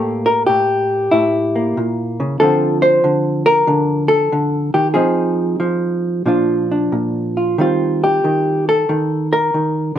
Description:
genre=solo jazz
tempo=94 BPM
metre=4/4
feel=swing 66% on 8ths, rubato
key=unclear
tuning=A4 = 440 Hz
part: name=hollow-body jazz guitar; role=solo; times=0.0-10.0 s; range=A2 to C5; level=-14 LUFS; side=equal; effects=none
room=moderate club reverb, RT60 0.5 s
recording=minimal, uncompressed stereo recording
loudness=-14 LUFS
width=side -10 dB against mid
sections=0.0-10.0 A section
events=none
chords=0.0 A7(no3); 2.4 Dm7; 5.0 Fm7; 6.3 Bb7; 7.6 Eb69

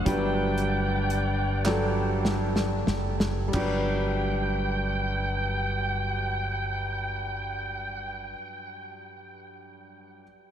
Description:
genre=slow gospel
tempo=29-40 BPM (dotted quarters)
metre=6/8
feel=straight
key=G major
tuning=A4 = 437 Hz
part: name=bright saxophone section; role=melody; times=0.0-8.3 s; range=B4 to G5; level=-32 LUFS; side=right 1 dB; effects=tape echo
part: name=clear concert grand piano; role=accompaniment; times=0.0-10.2 s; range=G2 to B4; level=-30 LUFS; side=equal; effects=none
part: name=fingered electric bass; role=bass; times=0.0-8.3 s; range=F#1 to G1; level=-30 LUFS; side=equal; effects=none
part: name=warm soul drum kit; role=drums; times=0.1-3.9 s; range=crash cymbal, hi-hat, kick drum, snare drum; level=-32 LUFS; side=left 1 dB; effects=none
part: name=group handclap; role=percussion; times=1.7-4.2 s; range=none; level=-42 LUFS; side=right 3 dB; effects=none
room=moderate huge ambient reverb, RT60 6.8 s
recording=dreamy mix soaked in reverb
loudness=-25 LUFS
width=side -10 dB against mid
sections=0.0-3.5 A section; 3.5-7.7 B section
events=slowing down 0.0-3.5; drum fill 1.7-3.5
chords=0.1 Gmaj7

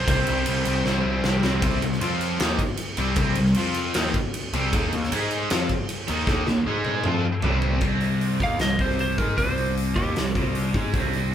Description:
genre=hard rock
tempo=155 BPM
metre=4/4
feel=straight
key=C minor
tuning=A4 = 441 Hz
part: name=lightly driven lead guitar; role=melody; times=0.0-1.4, 8.4-10.5 s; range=G4 to F5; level=-27 LUFS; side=right 2 dB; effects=none
part: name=tight distorted guitar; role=riff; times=0.0-7.8 s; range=C3 to Ab4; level=-30 LUFS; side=equal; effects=distortion
part: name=fuzz picked electric bass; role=bass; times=0.0-11.3 s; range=C2 to Ab2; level=-28 LUFS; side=equal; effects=overdrive
part: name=cranked stack guitar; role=riff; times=0.1-11.3 s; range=C3 to Ab4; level=-28 LUFS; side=right 3 dB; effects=overdrive, phaser
part: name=crunchy overdriven guitar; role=riff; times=0.1-11.3 s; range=C3 to Ab4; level=-29 LUFS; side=left 7 dB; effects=none
part: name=huge arena drum kit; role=drums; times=0.1-11.2 s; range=crash cymbal, hi-hat, kick drum, snare drum, toms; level=-26 LUFS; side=equal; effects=none
room=moderate large studio reverb, RT60 0.9 s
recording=band playing live in one room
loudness=-21 LUFS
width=side -10 dB against mid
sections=0.0-1.6 A section; 1.6-7.8 B section; 7.8-11.3 C section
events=drum fill 0.9-1.6, 6.3-7.8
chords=0.1 Cm; 1.6 C5; 2.0 F5; 2.4 Cm; 3.6 F5; 4.0 Cm; 4.7 Eb5; 5.1 Ab5; 5.5 Eb5; 6.7 Ab5; 7.1 F5; 7.4 C5; 7.8 Cm

